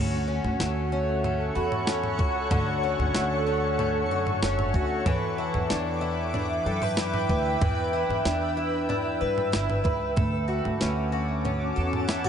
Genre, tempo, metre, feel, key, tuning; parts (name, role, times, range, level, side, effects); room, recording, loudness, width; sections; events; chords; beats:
dream pop; 94 BPM; 4/4; straight; A4 = 440 Hz
shimmering ambient pad; sustained chords; 0.0-12.3 s; C#4 to E6; -29 LUFS; right 2 dB; chorus, built-in reverb
picked twelve-string acoustic guitar; arpeggios; 0.0-12.3 s; D3 to B4; -29 LUFS; left 4 dB; wide subtle chorus, digital delay
upright bass; bass; 0.0-12.3 s; F#1 to G2; -30 LUFS; right 1 dB
crisp 8-bit digital drum machine; drums; 0.4-12.3 s; kick drum, snare drum, toms; -29 LUFS; right 1 dB
vibraphone with medium mallets; texture; 0.6-11.4 s; F#5 to B5; -38 LUFS; right 4 dB; digital delay
moderate huge ambient reverb, RT60 5.1 s; nothing above 11.0 kHz; -24 LUFS; side -8 dB against mid
0.0-12.3 A section
0.0 Dmaj7; 5.1 Em7; 10.2 Dmaj7
0.59 1.23 1.87 | 2.51 3.14 3.78 4.42 | 5.06 5.70 6.34 6.97 | 7.61 8.25 8.89 9.53 | 10.16 10.80 11.44 12.08